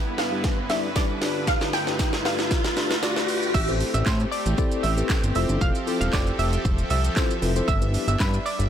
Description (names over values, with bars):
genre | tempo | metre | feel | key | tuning
dance-pop | 116 BPM | 4/4 | straight | A minor | A4 = 440 Hz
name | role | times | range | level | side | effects
wide unison pluck | melody | 0.0-2.5 s | D5 to G5 | -29 LUFS | right 1 dB | wide subtle chorus, tape echo
supersaw pad | sustained chords | 0.0-8.7 s | G2 to E5 | -30 LUFS | right 1 dB | sidechain pumping
riser | sound effects | 0.0-3.5 s | none | -30 LUFS | equal | none
house drum kit | drums | 0.2-8.7 s | crash cymbal, handclaps, hi-hat, kick drum, shaker, snare drum | -25 LUFS | equal | none
tambourine | percussion | 0.2-8.7 s | none | -44 LUFS | right 9 dB | none
mellow tine electric piano | accompaniment | 0.3-8.4 s | G3 to D5 | -29 LUFS | left 4 dB | medium stereo tremolo, sidechain pumping
analog pluck | melody | 3.5-8.6 s | B4 to F5 | -30 LUFS | right 4 dB | chorus, tape echo
fat analog bass | bass | 3.5-8.7 s | E1 to A2 | -24 LUFS | equal | sidechain pumping
room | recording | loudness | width
digital ambience | blown-out, overdriven recording, overdrive | -21 LUFS | side -9 dB against mid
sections
0.0-3.5 A section; 3.5-8.7 B section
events
build-up 0.0-3.5; drum fill 0.0-3.5; riser 0.0-3.5; drop 3.5-8.7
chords
0.0 Em7/G; 1.2 G7; 3.5 Am7; 5.4 Fmaj7; 7.7 Em7/G